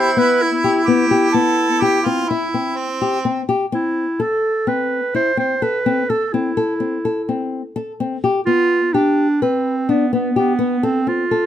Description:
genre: contemporary instrumental, chamber music in an uneven meter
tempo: 127 BPM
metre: 5/4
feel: straight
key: A minor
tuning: A4 = 440 Hz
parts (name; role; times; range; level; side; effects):
- clear clarinet; melody; 0.0-11.5 s; B3 to C5; -18 LUFS; right 2 dB; none
- warm harmonica; second line; 0.0-3.5 s; C4 to A4; -20 LUFS; right 2 dB; none
- nylon-string guitar; arpeggios; 0.0-11.5 s; B3 to B4; -19 LUFS; left 4 dB; none
room: little or no reverb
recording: close, detailed microphones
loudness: -16 LUFS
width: side -11 dB against mid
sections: 0.0-3.7 A section; 3.7-11.5 B section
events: none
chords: 0.0 Cmaj7; 3.7 Am; 8.5 G7; 10.8 F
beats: 0.40 0.88 | 1.35 1.83 2.30 2.77 3.25 | 3.72 4.20 4.67 5.14 5.62 | 6.09 6.57 7.04 7.51 7.99 | 8.46 8.94 9.41 9.88 10.36 | 10.83 11.30

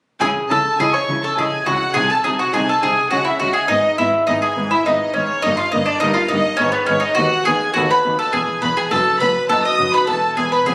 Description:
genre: classical, baroque-style concerto movement with solo episodes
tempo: 103 BPM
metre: 3/4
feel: straight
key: C# minor, E major from 7.2 s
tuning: A4 = 440 Hz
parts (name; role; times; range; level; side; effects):
- mandolin; melody; 0.2-10.7 s; B3 to D#5; -20 LUFS; equal; none
- warm chamber violin section; melody; 0.2-10.7 s; B4 to D#6; -26 LUFS; equal; none
- warm chamber violin section; second line; 0.2-10.7 s; B4 to D#6; -27 LUFS; equal; none
- dark studio viola section; accompaniment; 0.2-10.7 s; A#3 to E4; -30 LUFS; equal; none
- lute; accompaniment; 0.2-10.7 s; D#2 to A#4; -29 LUFS; equal; none
- rich chamber cello section; bass; 0.2-10.7 s; D#2 to C#3; -30 LUFS; equal; none
- rich chamber double bass section; bass; 0.2-10.7 s; E1 to D#2; -33 LUFS; equal; none
room: moderate recital hall reverb, RT60 1.3 s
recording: recorded on a phone in the room, studio ambience, compression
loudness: -17 LUFS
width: mono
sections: 0.2-10.7 A section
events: none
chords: 0.2 C#m; 2.0 G#/B#; 3.1 C#5; 3.7 G#m; 5.4 D#/G; 6.6 G#m; 7.2 B7/D#; 8.3 E; 8.9 B/F#; 10.1 E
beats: | 0.21 0.79 1.38 | 1.96 2.54 3.12 | 3.70 4.28 4.87 | 5.45 6.02 6.60 | 7.18 7.76 8.34 | 8.92 9.50 10.08 | 10.66

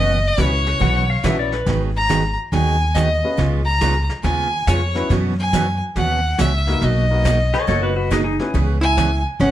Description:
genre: country, western swing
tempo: 140 BPM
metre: 4/4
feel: swing 66% on 8ths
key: unclear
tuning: A4 = 440 Hz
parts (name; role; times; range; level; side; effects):
- clear fiddle; melody; 0.0-9.5 s; C#5 to A#5; -21 LUFS; equal; none
- picked steel-string acoustic guitar; accompaniment; 0.0-9.5 s; B2 to G#4; -24 LUFS; right 5 dB; none
- upright bass; bass; 0.0-9.5 s; F#1 to F#2; -20 LUFS; equal; none
- clear upright piano; accompaniment; 0.4-8.5 s; A#3 to B4; -26 LUFS; left 3 dB; none
- vintage brush drum kit; drums; 0.4-9.5 s; brushed snare drum, hi-hat, kick drum, snare drum; -27 LUFS; equal; none
- pedal steel guitar; second line; 0.8-1.8, 7.5-8.7 s; D#4 to F#5; -22 LUFS; left 3 dB; none
- archtop guitar, miked and amplified; second line; 8.8-9.5 s; C#4 to E4; -20 LUFS; right 1 dB; none
room: moderate studio reverb, RT60 0.8 s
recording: tape saturation, lossy compression artefacts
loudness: -16 LUFS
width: side -12 dB against mid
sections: 0.0-9.5 A section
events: none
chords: 0.0 F#7sus4; 1.7 G#m7; 3.4 C#7; 5.1 F#7sus4; 6.8 Bmaj7; 8.5 C#m7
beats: 0.38 0.81 1.24 | 1.67 2.10 2.53 2.96 | 3.39 3.82 4.25 4.68 | 5.11 5.54 5.97 6.40 | 6.83 7.25 7.68 8.12 | 8.54 8.97 9.40

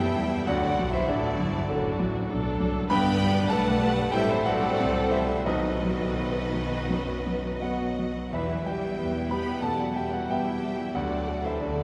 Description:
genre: classical, romantic movement for piano and orchestra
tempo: 82-102 BPM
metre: 4/4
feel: rubato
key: E minor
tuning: A4 = 439 Hz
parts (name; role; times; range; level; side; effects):
- rich studio violin section; melody; 0.0-11.8 s; D5 to B5; -40 LUFS; equal; none
- warm baby grand piano; melody; 0.0-11.8 s; B1 to B5; -30 LUFS; equal; none
- rich studio violin section; second line; 0.0-11.8 s; A4 to G5; -37 LUFS; equal; none
- clear studio viola section; accompaniment; 0.0-11.8 s; G3 to B4; -36 LUFS; equal; none
- clear studio cello section; bass; 0.0-11.8 s; D3 to B3; -37 LUFS; equal; none
- clear studio double bass section; bass; 0.0-11.8 s; F#1 to F#2; -36 LUFS; equal; none
- warm French horn section; sustained chords; 0.5-11.8 s; F#3 to C5; -38 LUFS; equal; none
- timpani; percussion; 8.3-9.3 s; none; barely audible; none; none
room: wet cathedral reverb, RT60 6.3 s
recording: recorded in a church or concert hall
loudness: -27 LUFS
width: mono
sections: 0.0-11.8 A section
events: none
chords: 0.5 D; 2.9 G; 4.1 Am7; 5.5 B; 8.3 Em; 10.9 D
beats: | 0.47 1.08 1.69 2.29 | 2.90 3.50 4.13 4.78 | 5.46 6.17 6.89 7.62 | 8.32 8.98 9.62 10.29 | 10.95 11.60

